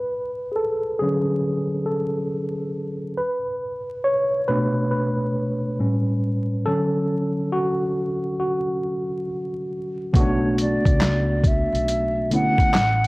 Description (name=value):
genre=lo-fi hip hop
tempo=69 BPM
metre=4/4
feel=swing 64% on 16ths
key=B dorian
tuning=A4 = 440 Hz
part: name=tine electric piano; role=accompaniment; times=0.0-12.8 s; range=A2 to C#5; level=-22 LUFS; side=equal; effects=overdrive, fast stereo tremolo, cassette tape, low-pass filter
part: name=upright bass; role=bass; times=10.1-13.1 s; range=A1 to C#2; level=-24 LUFS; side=equal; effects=none
part: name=dusty soul sampler-style drum kit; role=drums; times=10.1-13.1 s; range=handclaps, hi-hat, kick drum, snare drum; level=-20 LUFS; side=equal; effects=cassette tape
part: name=mellow hollow jazz flute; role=melody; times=10.2-13.1 s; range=C#5 to F#5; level=-23 LUFS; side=equal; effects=low-pass filter, cassette tape
room=light reverb, studio ambience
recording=home recording on cassette, vinyl crackle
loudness=-20 LUFS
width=side -22 dB against mid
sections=0.0-10.1 A section; 10.1-13.1 B section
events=tine electric piano solo 0.0-10.1; filter sweep on tine electric piano 0.0-10.1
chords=0.0 Dmaj7; 3.2 Bm7; 5.8 A9; 6.7 Dmaj7; 10.1 Bm7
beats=0.57 1.44 2.31 | 3.18 4.05 4.92 5.79 | 6.66 7.53 8.40 9.27 | 10.14 11.01 11.88 12.75